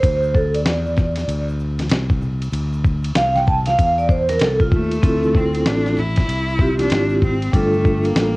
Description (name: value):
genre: hip hop, jazz-hop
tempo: 96 BPM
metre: 4/4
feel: swing 64% on 16ths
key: D minor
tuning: A4 = 440 Hz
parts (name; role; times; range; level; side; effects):
- vibraphone with medium mallets; accompaniment; 0.0-8.4 s; G3 to A5; -19 LUFS; right 1 dB; none
- sustaining fretless electric bass; bass; 0.0-8.4 s; G1 to E2; -22 LUFS; equal; none
- dusty soul sampler-style drum kit; drums; 0.0-8.3 s; hi-hat, kick drum, ride cymbal, snare drum; -20 LUFS; equal; cassette tape
- egg shaker and congas; percussion; 0.0-8.3 s; none; -35 LUFS; left 3 dB; none
- clear cello; melody; 4.7-8.4 s; A3 to E4; -23 LUFS; left 1 dB; cassette tape
room: small room reverb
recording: home recording on cassette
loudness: -16 LUFS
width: side -22 dB against mid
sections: 0.0-5.0 A section; 5.0-8.4 B section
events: vibraphone solo 0.0-5.0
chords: 0.0 Dsus2; 5.0 Dm9; 7.5 Gm9